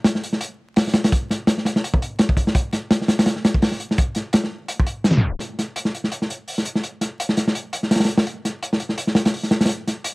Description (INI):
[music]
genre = drum and bass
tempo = 168 BPM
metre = 4/4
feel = swing 55% on 16ths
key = none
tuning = none
[part]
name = crunchy breakbeat drum kit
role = drums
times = 0.0-10.1 s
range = hi-hat, kick drum, snare drum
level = -18 LUFS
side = equal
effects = none
[sound]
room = little or no reverb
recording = dry, gritty hardware recording, vinyl crackle, tape stop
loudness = -19 LUFS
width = side -28 dB against mid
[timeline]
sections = 0.0-5.4 A section; 5.4-10.1 B section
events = drop 0.0-5.4; tape stop 5.1-5.4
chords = none